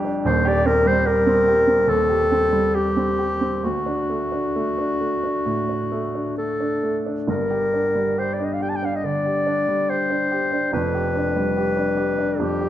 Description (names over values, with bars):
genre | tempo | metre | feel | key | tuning
classical, romantic duo for clarinet and grand piano | 65-74 BPM | 4/4 | rubato | G minor | A4 = 439 Hz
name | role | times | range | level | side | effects
warm baby grand piano | accompaniment | 0.0-12.7 s | Eb1 to G4 | -23 LUFS | right 2 dB | none
mellow clarinet | melody | 0.3-12.7 s | F#4 to A5 | -21 LUFS | left 2 dB | none
room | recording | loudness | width
moderate recital hall reverb, RT60 1.5 s | none | -19 LUFS | side -12 dB against mid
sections
0.0-12.7 A section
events
none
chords
0.2 Cm/Eb; 3.6 D; 7.3 Gm; 10.7 G7/F